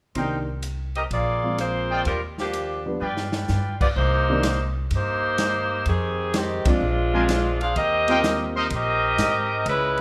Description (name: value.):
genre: jazz, big band swing.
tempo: 126 BPM.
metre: 4/4.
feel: swing 67% on 8ths.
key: C minor.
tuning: A4 = 441 Hz.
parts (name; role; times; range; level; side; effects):
warm grand piano; accompaniment; 0.2-10.0 s; Eb3 to F4; -31 LUFS; equal; none.
brilliant trumpet section; stabs; 0.2-3.7, 7.1-8.7 s; D4 to Ab5; -31 LUFS; equal; none.
upright bass; bass; 0.2-10.0 s; Bb1 to Ab2; -30 LUFS; equal; none.
swinging big-band drum kit; drums; 0.2-10.0 s; crash cymbal, hi-hat, kick drum, ride cymbal, rim click, snare drum; -30 LUFS; equal; none.
clear saxophone section; melody; 1.0-10.0 s; Eb3 to F5; -25 LUFS; equal; none.
room: moderate large studio reverb, RT60 1.2 s.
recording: none.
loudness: -23 LUFS.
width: mono.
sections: 0.2-4.0 A section; 4.0-10.0 B section.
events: drum fill 3.0-3.5; band accent 6.6.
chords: 0.2 Cm7; 1.1 Bb7; 2.1 Ebmaj9; 3.0 G7; 4.0 Cm7; 5.9 Fm9; 6.8 Bb9; 7.8 Eb6.